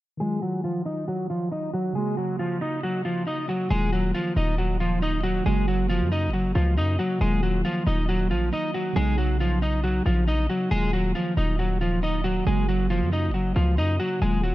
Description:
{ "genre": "hip hop, trap", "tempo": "137 BPM", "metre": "4/4", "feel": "half-time", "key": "Eb minor", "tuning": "A4 = 440 Hz", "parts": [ { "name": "electric guitar at the edge of break-up", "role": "melody", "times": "0.2-14.5 s", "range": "F3 to Eb5", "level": "-25 LUFS", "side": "equal", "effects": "low-pass filter" }, { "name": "mellow tine electric piano", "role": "accompaniment", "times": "0.2-14.5 s", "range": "Db3 to Gb4", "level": "-30 LUFS", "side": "moving between left 3 dB and right 10 dB", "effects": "auto-pan, low-pass filter" }, { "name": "hard-hitting 808-style bass", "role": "bass", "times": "3.7-14.5 s", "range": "Eb1 to Gb2", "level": "-24 LUFS", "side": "equal", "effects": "none" } ], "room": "digital ambience", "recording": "low-pass filter", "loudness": "-22 LUFS", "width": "side -16 dB against mid", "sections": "0.2-3.7 A section; 3.7-14.5 B section", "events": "filter sweep 0.2-3.7", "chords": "0.2 Ebmadd9; 2.0 Gb; 3.7 Ebmadd9; 5.5 Gb; 7.2 Ebmadd9; 9.0 Badd9; 10.7 Ebmadd9; 12.5 Gb" }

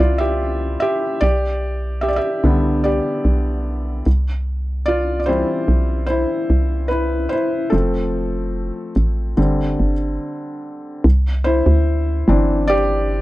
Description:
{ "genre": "pop ballad", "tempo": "74 BPM", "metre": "4/4", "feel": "straight", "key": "C major", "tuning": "A4 = 441 Hz", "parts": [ { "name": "felt-muted upright piano", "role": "accompaniment", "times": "0.0-13.2 s", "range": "D3 to E5", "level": "-19 LUFS", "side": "equal", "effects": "none" }, { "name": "hollow knocking FM bass", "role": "bass", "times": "0.0-13.2 s", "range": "F1 to D2", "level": "-18 LUFS", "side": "equal", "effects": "none" } ], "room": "small room ambience", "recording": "dry, close 1970s-style studio recording", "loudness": "-16 LUFS", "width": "side -17 dB against mid", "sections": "0.0-11.0 A section; 11.0-13.2 B section", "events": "felt piano solo 0.0-11.0, 11.0-13.2; break 10.2-11.0", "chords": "0.0 C; 1.2 G/B; 4.1 C; 7.7 F; 9.4 Gsus4; 11.0 Cadd9" }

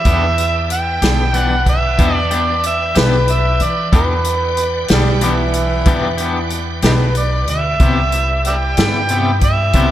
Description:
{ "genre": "slow blues", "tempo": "62 BPM (dotted quarters)", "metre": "12/8", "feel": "straight", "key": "E minor", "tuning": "A4 = 444 Hz", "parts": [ { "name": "overdriven harmonica", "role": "melody", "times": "0.0-9.9 s", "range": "D#4 to G5", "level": "-18 LUFS", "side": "right 2 dB", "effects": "none" }, { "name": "bright tonewheel organ", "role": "sustained chords", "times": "0.0-9.9 s", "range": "E4 to G5", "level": "-27 LUFS", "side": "equal", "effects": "slow rotary speaker, overdrive, chorus vibrato" }, { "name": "upright bass", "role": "bass", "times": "0.0-9.9 s", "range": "B1 to E3", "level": "-18 LUFS", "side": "equal", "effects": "none" }, { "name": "electric guitar at the edge of break-up", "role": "accompaniment", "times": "0.1-9.9 s", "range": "C3 to G4", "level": "-22 LUFS", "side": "left 4 dB", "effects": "tremolo" }, { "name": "vintage drum kit", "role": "drums", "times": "0.1-9.9 s", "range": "hi-hat, kick drum, snare drum", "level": "-18 LUFS", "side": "equal", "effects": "none" }, { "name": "growling tenor saxophone", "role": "second line", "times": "4.9-6.6 s", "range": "E3 to G3", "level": "-21 LUFS", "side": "right 3 dB", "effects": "slapback echo" } ], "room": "moderate lush hall reverb, RT60 3.1 s", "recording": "big arena sound", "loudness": "-13 LUFS", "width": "side -12 dB against mid", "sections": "0.0-9.9 A section", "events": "none", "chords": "0.0 Em7; 7.8 Cmaj7" }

